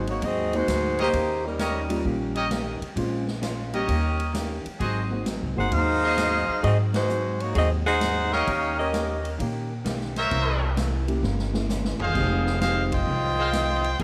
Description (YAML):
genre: jazz, big band swing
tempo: 131 BPM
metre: 4/4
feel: swing 67% on 8ths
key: Eb mixolydian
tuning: A4 = 440 Hz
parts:
  - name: clear saxophone section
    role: melody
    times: 0.0-2.1, 5.6-9.4, 12.9-14.0 s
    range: G3 to G5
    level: -27 LUFS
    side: equal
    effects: none
  - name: dark upright piano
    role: accompaniment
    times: 0.0-6.1, 11.1-12.9 s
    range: Gb3 to Bb4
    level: -34 LUFS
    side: equal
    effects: none
  - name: hollow-body jazz guitar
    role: accompaniment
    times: 0.0-14.0 s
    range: F2 to G4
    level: -37 LUFS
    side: equal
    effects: none
  - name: upright bass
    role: bass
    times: 0.0-14.0 s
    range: E1 to Bb2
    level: -30 LUFS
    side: equal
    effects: none
  - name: swinging big-band drum kit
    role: drums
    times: 0.1-14.0 s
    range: crash cymbal, hi-hat, kick drum, ride cymbal, snare drum, toms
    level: -35 LUFS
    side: equal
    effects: none
  - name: brilliant trumpet section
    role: stabs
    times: 1.0-13.5 s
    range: Gb4 to F5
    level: -32 LUFS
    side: equal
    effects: none
room: moderate echo chamber reverb, RT60 1.7 s, small room ambience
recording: none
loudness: -25 LUFS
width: mono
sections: 0.0-14.0 A section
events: band accent 6.9, 12.8; drum fill 11.2-12.2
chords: 0.0 Ab7; 1.1 Eb7; 3.0 Bbm7; 3.9 Eb7; 4.8 Ab7; 8.5 Eb7; 10.3 C7b9; 12.2 Fm7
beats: 0.22 0.68 | 1.14 1.59 2.05 2.51 | 2.97 3.42 3.88 4.34 | 4.80 5.26 5.72 6.18 | 6.63 7.09 7.55 8.01 | 8.47 8.93 9.39 9.85 | 10.31 10.77 11.23 11.69 | 12.15 12.61 13.07 13.53 | 13.99